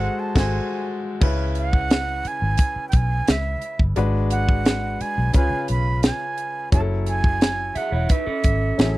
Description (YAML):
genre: lush 1970s-style soul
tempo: 87 BPM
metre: 4/4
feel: straight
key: C# minor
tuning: A4 = 438 Hz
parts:
  - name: breathy concert flute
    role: melody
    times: 0.0-9.0 s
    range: E5 to B5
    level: -26 LUFS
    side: right 4 dB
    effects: none
  - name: bright grand piano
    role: accompaniment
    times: 0.0-9.0 s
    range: C#3 to B#4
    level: -28 LUFS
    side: left 3 dB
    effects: none
  - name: vintage muted fingered electric bass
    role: bass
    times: 0.0-9.0 s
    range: E1 to C#2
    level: -23 LUFS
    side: equal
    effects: none
  - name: tight funk drum kit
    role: drums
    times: 0.4-9.0 s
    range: crash cymbal, hi-hat, kick drum, snare drum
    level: -19 LUFS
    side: equal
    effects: none
  - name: electric guitar through a small old amp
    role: riff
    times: 7.8-9.0 s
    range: C#4 to E5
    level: -26 LUFS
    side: right 3 dB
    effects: none
room: little or no reverb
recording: dry, close 1970s-style studio recording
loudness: -19 LUFS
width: side -17 dB against mid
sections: 0.0-1.2 A section; 1.2-9.0 B section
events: band accent 0.0-1.2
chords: 0.0 G#7b9; 1.2 C#m7; 4.0 G#m7b5; 5.3 C#7; 6.7 F#m7